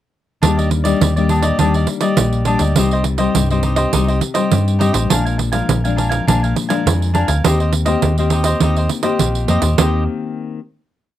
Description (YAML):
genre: samba and choro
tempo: 102 BPM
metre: 4/4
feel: straight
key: Eb major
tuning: A4 = 439 Hz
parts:
  - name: cavaquinho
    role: accompaniment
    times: 0.4-10.0 s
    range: D4 to Ab5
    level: -21 LUFS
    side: right 1 dB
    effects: none
  - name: nylon-string guitar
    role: accompaniment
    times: 0.4-10.6 s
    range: F2 to G4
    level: -20 LUFS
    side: left 7 dB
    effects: none
  - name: hollow-body short-scale fingered electric bass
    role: bass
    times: 0.4-10.1 s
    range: A1 to G2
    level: -17 LUFS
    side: equal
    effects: none
  - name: pandeiro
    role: percussion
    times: 0.4-9.9 s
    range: none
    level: -19 LUFS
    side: right 6 dB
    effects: none
room: light reverb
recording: dry, close 1970s-style studio recording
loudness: -14 LUFS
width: side -12 dB against mid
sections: 0.4-9.8 A section; 9.8-11.2 final chord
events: none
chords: 0.4 Ebmaj7; 2.8 Cm; 5.1 Bb7; 7.4 Eb6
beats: | 0.43 1.01 1.60 2.18 | 2.77 3.35 3.94 4.52 | 5.11 5.69 6.28 6.86 | 7.45 8.03 8.62 9.21 | 9.79 10.38